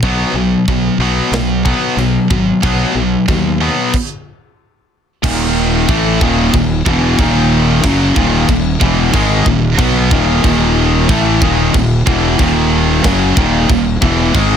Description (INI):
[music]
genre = heavy metal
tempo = 92 BPM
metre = 4/4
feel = straight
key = unclear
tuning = A4 = 440 Hz
[part]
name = heavy high-gain guitar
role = riff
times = 0.0-14.6 s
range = Eb2 to B3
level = -17 LUFS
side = right 11 dB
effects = distortion
[part]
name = tight distorted guitar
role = riff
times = 0.0-14.6 s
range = Eb2 to B3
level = -17 LUFS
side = left 10 dB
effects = distortion
[part]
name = fuzz fingered electric bass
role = bass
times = 0.0-14.6 s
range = Eb1 to D#2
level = -16 LUFS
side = right 1 dB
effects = overdrive
[part]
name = tight metal drum kit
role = drums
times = 0.0-14.5 s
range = china cymbal, crash cymbal, kick drum, snare drum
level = -18 LUFS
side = equal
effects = soft clipping on kick
[part]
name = crunchy overdriven guitar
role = riff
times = 5.2-14.6 s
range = Eb2 to Cb4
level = -17 LUFS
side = right 1 dB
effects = none
[sound]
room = light reverb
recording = dense, heavily limited modern master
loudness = -10 LUFS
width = side -8 dB against mid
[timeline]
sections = 0.0-5.2 A section; 5.2-14.6 B section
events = stop 3.9-5.2; half time 5.2-14.6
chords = 0.0 B5; 5.2 Ebm